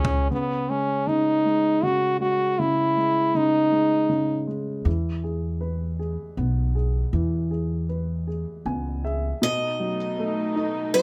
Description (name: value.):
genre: folk.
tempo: 79 BPM.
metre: 3/4.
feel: straight.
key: C# minor.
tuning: A4 = 440 Hz.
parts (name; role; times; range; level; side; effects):
stopped French horn; second line; 0.0-4.5 s; B3 to F#4; -23 LUFS; equal; none.
warm upright piano; accompaniment; 0.0-11.0 s; B2 to G#5; -31 LUFS; equal; none.
warm chamber string section; sustained chords; 0.0-0.3, 9.4-11.0 s; B2 to E4; -34 LUFS; equal; none.
upright bass; bass; 0.0-0.3, 4.9-9.3 s; B1 to E2; -28 LUFS; equal; none.
picked acoustic archtop guitar; melody; 9.4-11.0 s; C#5 to D#5; -28 LUFS; equal; tape echo.
room: light reverb.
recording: none.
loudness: -24 LUFS.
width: mono.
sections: 0.3-9.4 A section; 9.4-11.0 B section.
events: French horn solo 0.3-9.4.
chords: 0.3 C#sus2; 4.9 E6; 9.4 B7.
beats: | 0.31 1.07 1.83 | 2.59 3.35 4.10 | 4.86 5.62 6.38 | 7.14 7.90 8.66 | 9.43 10.19 10.95.